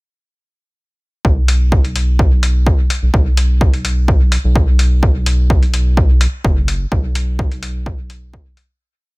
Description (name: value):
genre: dub techno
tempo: 127 BPM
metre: 4/4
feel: swing 53% on 16ths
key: unclear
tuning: A4 = 441 Hz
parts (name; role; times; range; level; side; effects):
- round analog bass; bass; 1.2-8.4 s; F#1 to B1; -15 LUFS; equal; sidechain pumping
- electronic kick drum; drums; 1.2-8.4 s; none; -15 LUFS; equal; small room ambience
- electronic hi-hat; drums; 1.5-8.7 s; none; -23 LUFS; left 2 dB; overdrive, small room ambience
room: little or no reverb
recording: none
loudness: -12 LUFS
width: side -26 dB against mid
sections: 1.2-8.8 groove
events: fade-out 6.3-8.8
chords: none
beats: | 1.25 1.72 2.19 2.67 | 3.14 3.61 4.08 4.56 | 5.03 5.50 5.97 6.45 | 6.92 7.39 7.86 8.34